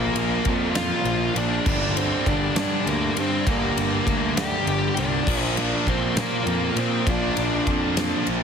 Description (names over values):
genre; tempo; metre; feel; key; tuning
quiet-loud alternative rock; 67 BPM (dotted quarters); 6/8; straight; unclear; A4 = 440 Hz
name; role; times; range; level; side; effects
high-gain lead guitar; melody; 0.0-8.3 s; Bb3 to G5; -26 LUFS; left 2 dB; distortion, tape echo
overdriven tonewheel organ; sustained chords; 0.0-8.4 s; G3 to D5; -37 LUFS; equal; none
distorted electric guitar; riff; 0.0-8.4 s; G2 to Bb3; -30 LUFS; left 13 dB; distortion
fuzz guitar; riff; 0.0-8.4 s; G2 to Bb3; -29 LUFS; right 12 dB; distortion
thick fuzz guitar; riff; 0.0-8.4 s; G2 to Bb3; -30 LUFS; right 1 dB; distortion
fuzz picked electric bass; bass; 0.0-8.4 s; G1 to Bb2; -27 LUFS; equal; overdrive
huge arena drum kit; drums; 0.2-8.4 s; crash cymbal, kick drum, ride cymbal, snare drum; -27 LUFS; left 1 dB; none
room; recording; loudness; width
small room ambience; heavily compressed radio sound; -20 LUFS; side -7 dB against mid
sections
0.0-8.4 A section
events
none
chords
0.0 Bb; 1.7 Gm; 5.3 Bb